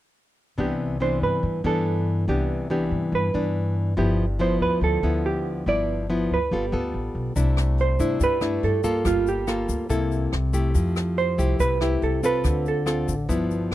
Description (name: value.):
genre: bossa nova.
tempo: 142 BPM.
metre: 4/4.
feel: straight.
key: C major.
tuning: A4 = 440 Hz.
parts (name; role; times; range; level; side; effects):
hollow-body jazz guitar; melody; 0.6-13.1 s; F4 to D5; -26 LUFS; right 4 dB; none.
nylon-string guitar; accompaniment; 0.6-13.7 s; G2 to A4; -25 LUFS; left 2 dB; none.
upright bass; bass; 0.6-13.7 s; G1 to G2; -26 LUFS; equal; none.
jazz brush drum kit; drums; 7.4-13.7 s; hi-hat, kick drum, rim click; -31 LUFS; equal; none.
tube shaker; percussion; 7.4-13.7 s; none; -42 LUFS; left 20 dB; none.
room: studio ambience.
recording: dry, close 1970s-style studio recording.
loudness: -21 LUFS.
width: side -14 dB against mid.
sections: 0.6-7.4 A section; 7.4-13.7 B section.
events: none.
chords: 0.6 Cmaj9; 4.0 G13; 6.5 G9; 7.4 C69; 9.1 Gm9; 9.9 C6; 10.8 Fmaj9; 12.4 Dm7.